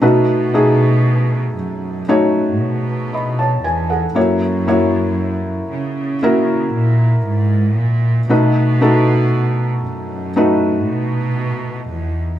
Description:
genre	pop ballad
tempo	58 BPM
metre	4/4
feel	straight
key	unclear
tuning	A4 = 440 Hz
part	felt-muted upright piano	accompaniment	0.0-12.4 s	B2 to B5	-16 LUFS	equal	none
part	warm chamber cello section	bass	0.0-12.4 s	E2 to C#3	-17 LUFS	right 1 dB	none
room	moderate large studio reverb, RT60 0.9 s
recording	band playing live in one room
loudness	-14 LUFS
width	side -12 dB against mid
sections	0.0-12.4 A section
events	none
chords	0.0 B7; 4.2 F#7; 8.3 B7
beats	| 0.03 1.06 2.10 3.13 | 4.16 5.20 6.23 7.27 | 8.30 9.34 10.37 11.40

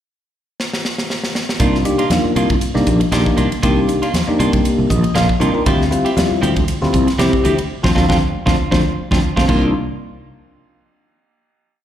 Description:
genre	electric jazz fusion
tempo	118 BPM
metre	4/4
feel	swing 54% on 16ths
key	C minor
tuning	A4 = 440 Hz
part	crisp fusion drum kit	drums	0.6-9.6 s	crash cymbal, hi-hat, kick drum, ride cymbal, snare drum	-20 LUFS	equal	none
part	bell-like tine electric piano	accompaniment	1.6-9.7 s	G3 to G5	-18 LUFS	left 2 dB	phaser, slapback echo
part	clean electric guitar	stabs	1.6-9.7 s	Eb3 to G4	-23 LUFS	right 3 dB	wide subtle chorus, slapback echo
part	sustaining fretless electric bass	bass	1.6-9.7 s	Bb1 to D2	-18 LUFS	right 1 dB	wide subtle chorus
part	congas	percussion	1.6-9.7 s	none	-23 LUFS	equal	slapback echo
room	light reverb, small room ambience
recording	live gig heard through the venue's PA, club reverb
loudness	-14 LUFS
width	side -10 dB against mid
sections	0.0-1.6 pickup bar; 1.6-9.7 groove; 9.7-11.8 final hit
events	drum fill 0.6-1.6; tine electric piano fill 4.6-5.7, 9.0-9.7; band accent 7.7-9.7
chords	0.0 N.C.; 1.6 Cm11; 5.7 Dm11; 9.5 Cm11; 9.7 N.C.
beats	0.07 0.58 1.09 | 1.60 2.11 2.61 3.12 | 3.63 4.14 4.65 5.15 | 5.66 6.17 6.68 7.19 | 7.70 8.21 8.72 9.23

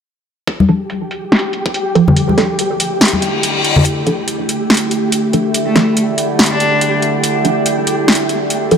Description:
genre	deep dubstep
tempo	142 BPM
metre	4/4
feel	swing 60% on 16ths, half-time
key	D minor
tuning	A4 = 440 Hz
part	deep house drum kit	drums	0.5-8.8 s	hi-hat, snare drum	-15 LUFS	equal	overdrive, low-pass filter on hats, studio reverb, low-pass filter on snare
part	electronic kick drum	drums	0.5-1.7 s	none	-21 LUFS	left 1 dB	overdrive, high-pass filter on kick, studio reverb, high-pass filter on room
part	flickering grainy texture	texture	0.5-8.8 s	G4	-21 LUFS	left 1 dB	built-in reverb
part	congas	percussion	0.6-3.8 s	none	-15 LUFS	left 2 dB	dub echo
part	filtered dub chord stab	stabs	0.7-8.8 s	F3 to A4	-17 LUFS	right 3 dB	phaser, analog chorus, dub echo
part	overtone-sweeping drone	sustained chords	2.8-8.8 s	D3 to E4	-18 LUFS	right 2 dB	chorus, built-in reverb, phaser
part	reverse cymbal	sound effects	3.2-3.9 s	none	-19 LUFS	left 5 dB	none
part	clear cello	melody	5.7-6.9 s	A3 to D4	-18 LUFS	left 1 dB	vintage 12-bit sampler grit, dub echo
room	moderate huge ambient reverb, RT60 4.0 s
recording	none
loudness	-12 LUFS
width	side -7 dB against mid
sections	0.5-3.9 A section; 3.9-8.8 B section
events	filter sweep on synth stab 0.5-3.9, 3.9-8.8; kick drops out 2.2-3.9; reverse cymbal 3.2-3.9; build-up 3.9-8.8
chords	0.5 Dm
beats	| 0.47 0.90 1.32 1.74 | 2.17 2.59 3.01 3.43 | 3.86 4.28 4.70 5.12 | 5.55 5.97 6.39 6.81 | 7.24 7.66 8.08 8.50

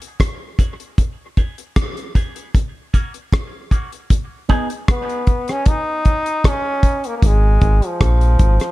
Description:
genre	dub reggae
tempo	77 BPM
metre	4/4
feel	straight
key	G# dorian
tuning	A4 = 440 Hz
part	damped 70s drum kit	drums	0.0-8.7 s	hi-hat, kick drum, rim click	-16 LUFS	equal	none
part	electric guitar with an envelope filter	accompaniment	0.6-4.7 s	A#3 to G#4	-27 LUFS	right 2 dB	high-pass filter, dub echo
part	brilliant trombone	melody	4.9-8.7 s	F3 to D#4	-20 LUFS	equal	dub echo
part	round analog bass	bass	7.2-8.6 s	Ab1 to Bb1	-13 LUFS	equal	none
room	small room ambience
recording	dark, warm production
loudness	-16 LUFS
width	side -18 dB against mid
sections	0.0-4.1 A section; 4.1-8.7 B section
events	filter sweep on clean electric guitar 0.0-4.1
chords	0.0 F#; 1.0 G#m; 2.5 F#; 4.1 G#m; 5.7 N.C.; 7.2 Fmadd11/Ab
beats	0.20 | 0.98 1.76 2.54 3.32 | 4.10 4.88 5.67 6.45 | 7.23 8.01

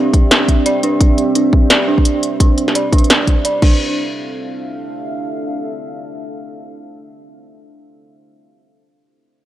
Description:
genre	half-time drum and bass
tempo	172 BPM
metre	4/4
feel	swing 58% on 16ths, half-time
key	D minor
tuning	A4 = 440 Hz
part	deep dark ambient pad	sustained chords	0.0-7.0 s	C4 to F5	-21 LUFS	right 2 dB	chorus, built-in reverb, sidechain pumping
part	dark detuned synth bell	arpeggios	0.0-3.9 s	D4 to D5	-18 LUFS	right 1 dB	chorus, vintage 12-bit sampler grit, low-pass filter, analog delay
part	electronic kick drum	drums	0.1-3.7 s	none	-12 LUFS	equal	none
part	industrial drum kit	drums	0.1-3.7 s	crash cymbal, hi-hat, snare drum	-16 LUFS	equal	none
room	light reverb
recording	dry, gritty hardware recording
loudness	-12 LUFS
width	side -13 dB against mid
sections	0.0-3.8 A section; 3.8-6.6 B section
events	filter sweep on synth bell 0.0-3.8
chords	0.0 C; 3.6 Dm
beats	0.31 0.66 | 1.01 1.36 1.70 2.05 | 2.40 2.75 3.10 3.45 | 3.80 4.15 4.50 4.84 | 5.19 5.54 5.89 6.24

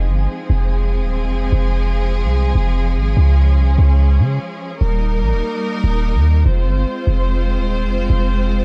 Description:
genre	hip hop, trap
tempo	146 BPM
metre	4/4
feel	half-time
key	F minor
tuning	A4 = 436 Hz
part	warm symphonic string section	sustained chords	0.0-8.6 s	F3 to C5	-25 LUFS	equal	none
part	warm 808-style bass	bass	0.0-8.6 s	Eb1 to Db3	-17 LUFS	equal	none
room	little or no reverb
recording	echo-heavy mix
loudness	-17 LUFS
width	mono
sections	0.0-8.6 A section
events	none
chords	0.0 Fm; 3.2 Db; 4.8 Eb; 6.5 Fm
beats	0.29 0.70 1.11 | 1.52 1.94 2.35 2.76 | 3.17 3.58 3.99 4.40 | 4.81 5.22 5.63 6.04 | 6.46 6.87 7.28 7.69 | 8.10 8.51

